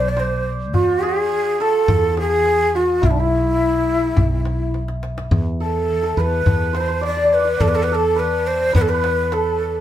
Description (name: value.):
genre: Persian modal ensemble.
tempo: 105 BPM.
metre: 4/4.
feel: straight.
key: E dastgah homayun.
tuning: A4 = 439 Hz.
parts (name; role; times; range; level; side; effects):
breathy ney; melody; 0.0-9.8 s; D4 to D5; -19 LUFS; equal; none.
santur; second line; 0.0-9.8 s; E4 to D5; -24 LUFS; equal; none.
woody fretless electric bass; bass; 0.0-9.8 s; B1 to E2; -22 LUFS; equal; none.
tombak; percussion; 0.0-9.7 s; none; -20 LUFS; left 1 dB; none.
room: wet studio ambience, RT60 0.5 s.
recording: band playing live in one room.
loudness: -16 LUFS.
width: side -11 dB against mid.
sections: 0.0-5.3 A section; 5.3-9.8 B section.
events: drum fill 4.7-5.3.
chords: none.